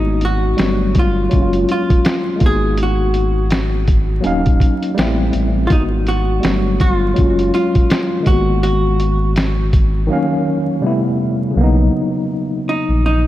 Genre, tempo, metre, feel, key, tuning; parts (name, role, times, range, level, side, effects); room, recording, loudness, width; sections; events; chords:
lo-fi hip hop; 82 BPM; 4/4; swing 60% on 16ths; G# dorian; A4 = 441 Hz
vintage hollow-body jazz guitar; melody; 0.0-13.3 s; D#4 to G#4; -20 LUFS; left 1 dB
tine electric piano; accompaniment; 0.0-13.3 s; C3 to E#5; -18 LUFS; equal; overdrive, fast stereo tremolo, cassette tape
sub bass with octave; bass; 0.0-13.3 s; D#1 to B1; -18 LUFS; equal
lo-fi sampler-style drum kit; drums; 0.2-9.9 s; hi-hat, kick drum, snare drum; -17 LUFS; equal
moderate cathedral reverb, RT60 4.0 s; dreamy mix soaked in reverb, vinyl crackle; -13 LUFS; side -14 dB against mid
0.0-11.6 A section; 11.6-13.3 B section
drums muted 10.1-11.6
0.0 G#m9; 0.6 Gmaj7; 1.3 F#maj7; 2.4 G#m9; 4.2 D#m7; 5.0 Am9; 5.7 G#m9; 6.4 Gmaj7; 7.2 F#maj7; 8.3 G#m9; 10.1 D#m7; 10.8 Am9; 11.6 Bmaj7